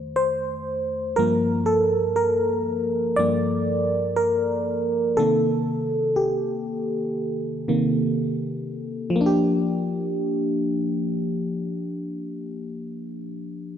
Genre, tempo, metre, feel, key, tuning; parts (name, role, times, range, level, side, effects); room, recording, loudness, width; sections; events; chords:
R&B; 60 BPM; 4/4; straight; G minor; A4 = 440 Hz
FM electric piano; solo; 0.0-13.8 s; G2 to D5; -22 LUFS; equal; chorus
moderate lush hall reverb, RT60 2.6 s; -21 LUFS; side -9 dB against mid
0.0-9.2 A section; 9.2-13.2 B section
FM electric piano solo 0.0-9.2
0.0 F7; 1.2 Gm7; 5.2 Cm7; 9.2 Gm7